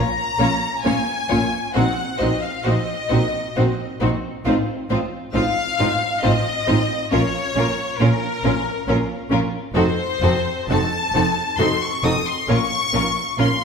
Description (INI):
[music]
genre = classical, slow romantic movement for string orchestra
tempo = 67 BPM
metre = 3/4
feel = rubato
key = Bb minor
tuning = A4 = 440 Hz
[part]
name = clear symphonic violin section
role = melody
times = 0.0-13.6 s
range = Bb4 to Eb6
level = -22 LUFS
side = left 4 dB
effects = none
[part]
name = rich symphonic violin section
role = second line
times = 0.4-13.5 s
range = F4 to Db5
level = -26 LUFS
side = left 2 dB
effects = none
[part]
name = warm symphonic viola section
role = accompaniment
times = 0.4-13.5 s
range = Bb3 to Eb4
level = -24 LUFS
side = equal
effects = none
[part]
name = dark symphonic double bass section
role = bass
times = 0.4-13.5 s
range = F1 to Bb1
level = -25 LUFS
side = right 2 dB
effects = none
[part]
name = rich symphonic cello section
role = bass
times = 0.4-13.5 s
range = F2 to Bb2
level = -26 LUFS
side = right 2 dB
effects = none
[sound]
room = wet scoring stage reverb, RT60 1.5 s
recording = minimal, uncompressed stereo recording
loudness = -18 LUFS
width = side -6 dB against mid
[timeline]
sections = 0.0-13.6 A section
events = none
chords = 0.0 Bbm; 1.7 Cm7b5/Bb; 4.5 F7/A; 7.1 Bbm; 9.7 F7; 12.5 Bbm